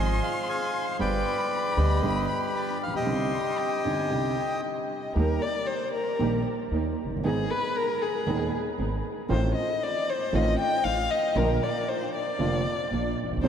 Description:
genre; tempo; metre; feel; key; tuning
tango; 116 BPM; 4/4; rubato; C harmonic minor, Eb major from 5.2 s; A4 = 444 Hz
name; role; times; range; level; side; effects
bandoneon; melody; 0.0-4.6 s; G4 to Ab5; -30 LUFS; left 1 dB; none
warm violin; second line; 0.0-13.5 s; Ab4 to C6; -29 LUFS; left 2 dB; none
dark baby grand piano; accompaniment; 0.0-13.5 s; Eb1 to Ab4; -30 LUFS; right 2 dB; none
upright bass; bass; 0.0-13.5 s; F1 to Eb2; -29 LUFS; equal; none
muted studio string section; stabs; 5.2-13.5 s; A3 to Ab4; -35 LUFS; right 2 dB; none
room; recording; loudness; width
wet cathedral reverb, RT60 6.6 s; in a vast, echoing space; -24 LUFS; side -8 dB against mid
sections
0.0-5.2 A section; 5.2-13.5 B section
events
violin solo 5.2-13.5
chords
0.0 Fm/Ab; 1.0 G; 3.1 Cmadd9; 5.2 Eb; 7.2 Abm; 9.3 F7/A; 11.4 Bb

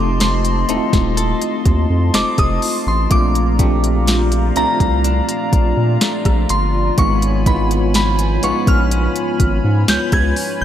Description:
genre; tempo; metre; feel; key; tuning
contemporary R&B; 62 BPM; 4/4; straight; Bb major; A4 = 440 Hz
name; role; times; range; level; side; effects
glassy synth bell; melody; 0.0-10.6 s; Bb5 to Ab6; -22 LUFS; equal; chorus, diffuse ambient delay
tine electric piano; accompaniment; 0.0-10.6 s; Ab3 to A4; -21 LUFS; equal; medium stereo tremolo
hollow soft pad; sustained chords; 0.0-10.6 s; F4 to C6; -25 LUFS; left 1 dB; chorus
direct-recorded clean electric guitar; arpeggios; 0.0-10.6 s; Ab2 to A4; -26 LUFS; left 6 dB; lush chorus, diffuse ambient delay
saturated sub bass; bass; 0.0-10.6 s; Eb1 to Bb2; -17 LUFS; equal; none
smooth R&B drum kit; drums; 0.2-10.6 s; hi-hat, kick drum, rim click, snare drum; -18 LUFS; equal; overdrive
room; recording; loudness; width
light reverb; none; -13 LUFS; side -10 dB against mid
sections
0.0-10.6 A section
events
none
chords
0.0 F7; 3.1 Bbmaj7; 7.0 Db7/Ab

